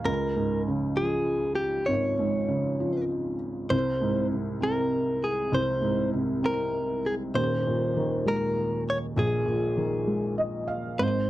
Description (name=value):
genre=pop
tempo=66 BPM (dotted quarters)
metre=6/8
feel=straight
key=unclear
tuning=A4 = 440 Hz
part: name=felt-muted upright piano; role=accompaniment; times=0.0-11.3 s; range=Eb1 to F5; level=-27 LUFS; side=equal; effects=none
part: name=direct-recorded clean electric guitar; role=melody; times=0.1-11.3 s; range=G4 to Db5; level=-28 LUFS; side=equal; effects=slapback echo
room=light reverb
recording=dry, close 1970s-style studio recording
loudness=-25 LUFS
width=side -15 dB against mid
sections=0.0-11.3 A section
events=felt piano fill 10.1-11.0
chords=0.0 Db; 3.7 Ab/C; 7.3 Ebsus4